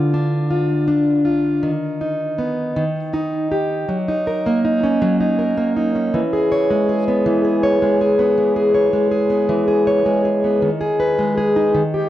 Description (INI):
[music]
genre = pop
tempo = 53 BPM (dotted quarters)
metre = 6/8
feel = straight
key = unclear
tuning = A4 = 441 Hz
[part]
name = fingerpicked plugged-in steel-string acoustic guitar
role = solo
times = 0.0-12.1 s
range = D3 to C#5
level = -16 LUFS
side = equal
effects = ping-pong delay
[sound]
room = light reverb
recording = worn, warbling old tape, cassette tape, warbly pitch drift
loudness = -16 LUFS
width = side -13 dB against mid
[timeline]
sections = 0.0-3.9 A section; 3.9-12.1 B section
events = none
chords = 0.0 Dm; 1.6 B/D#; 2.8 D#; 3.9 F#6; 6.1 E6; 10.6 G#m/D#